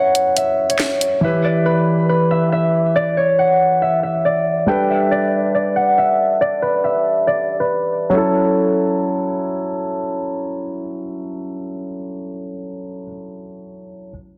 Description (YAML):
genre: hip hop, drill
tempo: 139 BPM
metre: 4/4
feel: half-time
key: F# phrygian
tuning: A4 = 440 Hz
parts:
  - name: concert harp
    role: melody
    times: 0.0-10.3 s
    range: A4 to G5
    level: -19 LUFS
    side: equal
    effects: low-pass filter, digital delay
  - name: dark concert grand piano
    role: accompaniment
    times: 0.0-14.1 s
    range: E3 to B4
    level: -23 LUFS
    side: equal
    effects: low-pass filter
  - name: drill drum kit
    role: drums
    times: 0.1-1.1 s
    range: handclaps, hi-hat, snare drum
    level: -22 LUFS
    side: equal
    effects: none
room: moderate recital hall reverb, RT60 1.6 s, small room ambience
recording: dense, heavily limited modern master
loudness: -18 LUFS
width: mono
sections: 0.0-8.1 A section; 8.1-11.6 B section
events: break 0.0-1.2; filter sweep 0.0-8.1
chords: 0.0 F#7(no3); 1.2 Em; 4.7 Gadd9; 8.1 F#m7